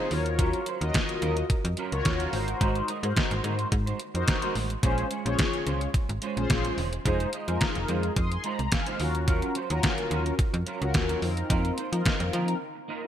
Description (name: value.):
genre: early-eighties boogie funk.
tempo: 108 BPM.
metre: 4/4.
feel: straight.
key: unclear.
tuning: A4 = 440 Hz.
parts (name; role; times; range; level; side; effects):
mellow synth brass; accompaniment; 0.0-13.1 s; C4 to Eb6; -31 LUFS; left 3 dB; chorus, phaser.
clean electric guitar; riff; 0.0-13.1 s; Gb3 to Eb5; -35 LUFS; right 6 dB; ensemble chorus.
slap-like FM bass; bass; 0.1-12.5 s; E1 to F3; -29 LUFS; equal; none.
detuned 8-bit digital drum machine; drums; 0.1-12.6 s; hi-hat, kick drum, snare drum; -28 LUFS; equal; overdrive, gated reverb.
room: light reverb, digital ambience.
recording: bright 1980s-style digital production.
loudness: -25 LUFS.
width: side -10 dB against mid.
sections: 0.0-13.1 A section.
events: break 12.6-13.1.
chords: 0.1 Ebm9; 2.3 Ab7; 4.8 Bbm9; 7.1 Fm7; 9.0 Ebm9; 11.2 F7sus4.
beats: | 0.39 0.94 1.50 2.06 | 2.61 3.17 3.72 4.28 | 4.83 5.39 5.94 6.50 | 7.05 7.61 8.17 8.72 | 9.28 9.83 10.39 10.94 | 11.50 12.05 12.61.